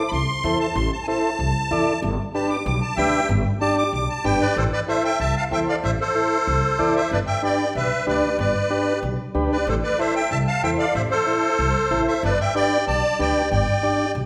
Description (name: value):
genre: latin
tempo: 188 BPM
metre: 4/4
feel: straight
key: A minor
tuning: A4 = 444 Hz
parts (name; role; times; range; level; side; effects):
- musette accordion; melody; 0.0-14.1 s; A4 to D6; -25 LUFS; equal; none
- overdriven combo organ; accompaniment; 0.0-14.1 s; D4 to D5; -27 LUFS; equal; none
- upright bass; bass; 0.1-14.3 s; G1 to E2; -28 LUFS; equal; none
room: wet recital hall reverb, RT60 1.4 s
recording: recorded in a church or concert hall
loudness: -21 LUFS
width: mono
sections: 0.0-4.6 A section; 4.6-14.3 B section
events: accordion solo 0.0-4.6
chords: 0.0 Am; 2.0 G; 4.6 Am; 7.1 G; 9.7 Am; 12.2 G